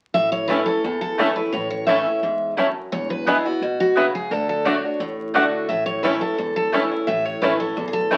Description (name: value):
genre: bluegrass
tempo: 173 BPM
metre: 4/4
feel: straight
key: A major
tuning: A4 = 441 Hz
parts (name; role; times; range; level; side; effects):
- picked steel-string acoustic guitar; melody; 0.1-8.2 s; F#4 to E5; -25 LUFS; equal; none
- picked swing-style acoustic guitar; accompaniment; 0.1-8.2 s; E2 to F#4; -28 LUFS; equal; none
- upright bass; bass; 0.1-8.2 s; E1 to E2; -39 LUFS; equal; none
- bluegrass banjo; arpeggios; 0.5-8.2 s; A3 to F#4; -26 LUFS; equal; none
- mandolin; stabs; 0.5-8.2 s; A3 to A5; -25 LUFS; equal; none
room: wet studio reverb, RT60 0.5 s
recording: very old 78 rpm record, vinyl crackle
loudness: -21 LUFS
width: mono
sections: 0.1-8.2 A section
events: none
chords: 0.1 A; 2.9 E; 4.3 D; 5.7 A